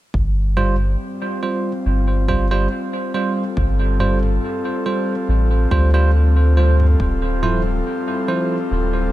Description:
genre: ambient dub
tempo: 70 BPM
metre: 4/4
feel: straight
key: unclear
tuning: A4 = 440 Hz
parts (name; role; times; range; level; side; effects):
- airy breathy pad; sustained chords; 0.1-9.1 s; G3 to A4; -24 LUFS; left 2 dB; chorus
- soft dub sub bass; bass; 0.1-9.1 s; D1 to D2; -16 LUFS; equal; none
- electronic kick drum; drums; 0.1-7.2 s; none; -24 LUFS; equal; overdrive
- bell-like tine electric piano; stabs; 0.6-8.6 s; F3 to C5; -23 LUFS; right 4 dB; dub echo
- electronic toms; drums; 0.6-7.6 s; none; -30 LUFS; equal; none
room: light reverb, digital ambience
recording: echo-heavy mix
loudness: -16 LUFS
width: side -15 dB against mid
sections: 0.1-9.1 A section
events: none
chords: 0.1 G7sus4; 7.0 Dm9

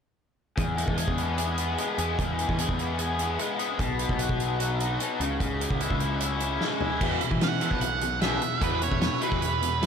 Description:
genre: indie rock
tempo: 149 BPM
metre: 4/4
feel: straight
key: E major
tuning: A4 = 440 Hz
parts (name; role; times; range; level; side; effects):
- raw garage guitar; riff; 0.6-9.9 s; E2 to G#4; -28 LUFS; left 3 dB; overdrive, analog chorus
- fuzz picked electric bass; bass; 0.6-9.9 s; B1 to E3; -31 LUFS; equal; overdrive
- loose indie drum kit; drums; 0.6-9.9 s; crash cymbal, hi-hat, kick drum, snare drum, toms; -30 LUFS; equal; none
- octave-fuzz lead guitar; melody; 7.4-9.9 s; B4 to F#5; -28 LUFS; right 6 dB; distortion, tape echo
room: moderate huge ambient reverb, RT60 7.7 s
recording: dreamy mix soaked in reverb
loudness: -24 LUFS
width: side -7 dB against mid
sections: 0.6-7.0 A section; 7.0-9.9 B section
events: drum fill 6.6-7.0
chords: 0.6 E; 3.8 B; 5.2 C#m; 7.0 E5

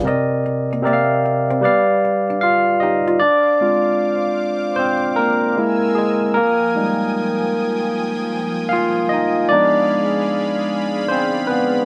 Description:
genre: R&B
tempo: 76 BPM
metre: 4/4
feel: swing 64% on 16ths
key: unclear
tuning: A4 = 440 Hz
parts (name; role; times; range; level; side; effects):
- barky tine electric piano; accompaniment; 0.0-11.8 s; C3 to F5; -18 LUFS; equal; overdrive
- hollow-body jazz guitar; second line; 0.1-3.2 s; Bb3 to G4; -27 LUFS; equal; none
- warm analog pad; sustained chords; 3.2-11.8 s; F3 to E6; -29 LUFS; equal; chorus, tremolo
room: light reverb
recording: band playing live in one room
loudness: -18 LUFS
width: mono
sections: 0.0-3.2 A section; 3.2-11.8 B section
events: tine electric piano solo 3.2-11.8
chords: 0.0 Cm7; 1.6 G7; 3.2 Dm7b5; 5.6 Caug7; 6.4 Fm9; 9.5 Fdim7

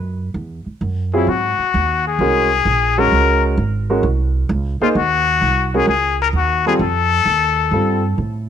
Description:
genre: modal jazz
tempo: 130 BPM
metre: 4/4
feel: swing 68% on 8ths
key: unclear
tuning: A4 = 439 Hz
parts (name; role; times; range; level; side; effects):
- upright bass; bass; 0.0-8.5 s; G#1 to A2; -20 LUFS; right 2 dB; none
- trumpet with straight mute; melody; 1.1-8.1 s; E4 to A#4; -16 LUFS; left 8 dB; none
- warm grand piano; accompaniment; 1.1-8.0 s; F#3 to B#4; -19 LUFS; right 2 dB; none
room: light reverb, small room ambience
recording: none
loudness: -14 LUFS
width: side -8 dB against mid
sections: 0.0-8.5 A section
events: none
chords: 0.0 F#7(no3); 1.3 G#9sus4; 6.8 F9

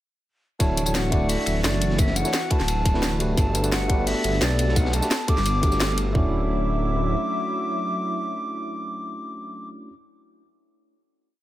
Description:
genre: liquid drum and bass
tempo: 173 BPM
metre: 4/4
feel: straight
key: D major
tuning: A4 = 440 Hz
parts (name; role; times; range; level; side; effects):
- concert flute; melody; 0.6-9.7 s; D5 to D6; -29 LUFS; equal; ping-pong delay
- barky tine electric piano; accompaniment; 0.6-9.9 s; A3 to D5; -29 LUFS; equal; dub echo
- warm analog pad; sustained chords; 0.6-9.7 s; E3 to C#6; -32 LUFS; equal; chorus, tremolo, sidechain pumping
- swelling detuned saw bass; bass; 0.6-7.2 s; D1 to B1; -24 LUFS; equal; none
- crunchy breakbeat drum kit; drums; 0.6-6.1 s; hi-hat, ride cymbal, snare drum; -33 LUFS; equal; high-pass filter on cymbals, high-pass filter on hats, high-pass filter on snare, high-pass filter on room
- garage drum kit; drums; 0.6-6.2 s; kick drum, toms; -22 LUFS; equal; none
- garage drum kit; drums; 0.6-6.0 s; hi-hat, snare drum, tambourine; -27 LUFS; left 1 dB; none
room: studio ambience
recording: none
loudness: -21 LUFS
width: side -14 dB against mid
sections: 0.6-6.2 drop; 6.2-8.9 final chord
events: drop 0.6-6.2; band accent 5.8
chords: 0.6 Dmaj9; 3.4 Gmaj9; 6.2 Dmaj9

